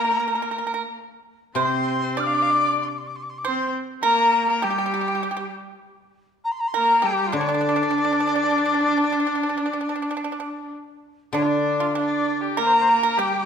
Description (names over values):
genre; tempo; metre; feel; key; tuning
chinese traditional, Chinese chamber ensemble; 98 BPM; 4/4; rubato; unclear; A4 = 440 Hz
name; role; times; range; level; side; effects
dizi; melody; 0.0-13.5 s; D5 to F6; -24 LUFS; left 1 dB; none
clear erhu; second line; 0.0-13.5 s; D4 to F5; -26 LUFS; left 5 dB; none
clear horsehead fiddle; second line; 0.0-13.5 s; G3 to D4; -27 LUFS; right 3 dB; none
pipa; second line; 0.0-13.5 s; D4 to D5; -27 LUFS; right 4 dB; none
guzheng; accompaniment; 1.6-3.4, 7.3-13.2 s; C3 to D3; -28 LUFS; left 3 dB; none
room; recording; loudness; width
moderate concert hall reverb, RT60 1.7 s; minimal, uncompressed stereo recording; -20 LUFS; side -7 dB against mid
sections
0.0-11.3 A section; 11.3-13.5 B section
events
none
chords
none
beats
0.31 0.94 | 1.57 2.19 2.81 3.43 | 4.03 4.64 5.24 5.84 | 6.44 7.04 7.65 8.25 | 8.85 9.46 10.09 10.72 | 11.35 11.97 12.58 13.19